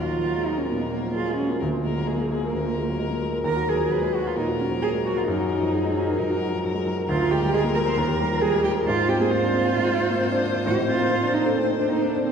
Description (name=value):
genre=quick classical-period movement for piano trio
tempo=132 BPM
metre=4/4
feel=rubato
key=Eb minor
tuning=A4 = 442 Hz
part: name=warm violin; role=melody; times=0.0-12.3 s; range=Ab4 to C5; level=-30 LUFS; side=left 5 dB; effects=none
part: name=dark cello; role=second line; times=0.0-12.3 s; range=Bb3 to C5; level=-25 LUFS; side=right 3 dB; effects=none
part: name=warm grand piano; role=accompaniment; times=0.0-12.3 s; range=D2 to C5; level=-24 LUFS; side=equal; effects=none
room=wet concert hall reverb, RT60 2.2 s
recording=heard from further back in the room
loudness=-21 LUFS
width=side -7 dB against mid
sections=0.0-12.3 A section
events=none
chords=0.0 Ebm; 1.6 Bb7/D; 3.4 Ebm; 5.3 Ebm/Gb; 7.1 Bb7/D; 8.0 Eb; 8.9 Fm/Ab; 10.7 Adim